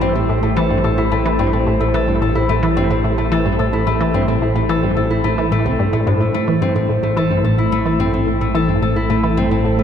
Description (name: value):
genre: ambient, sequencer-driven space music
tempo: 109 BPM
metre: 4/4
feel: straight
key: A minor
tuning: A4 = 441 Hz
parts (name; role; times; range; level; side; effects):
- sweeping resonant pad; sustained chords; 0.0-9.8 s; A2 to C5; -23 LUFS; equal; chorus
- concert harp; arpeggios; 0.0-9.8 s; A2 to A4; -19 LUFS; left 3 dB; auto-pan, tape echo
- resonant blip pluck; riff; 0.0-9.8 s; C2 to E3; -18 LUFS; equal; chorus, cassette tape, tape echo
- warm sub bass; bass; 0.0-9.8 s; A1; -24 LUFS; right 1 dB; none
room: wet cathedral reverb, RT60 5.4 s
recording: in a vast, echoing space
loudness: -14 LUFS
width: side -8 dB against mid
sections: 0.0-9.8 A section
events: none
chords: 0.0 Am7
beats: 0.29 0.84 1.39 | 1.94 2.49 3.04 3.59 | 4.14 4.69 5.25 5.79 | 6.35 6.90 7.45 8.00 | 8.55 9.10 9.65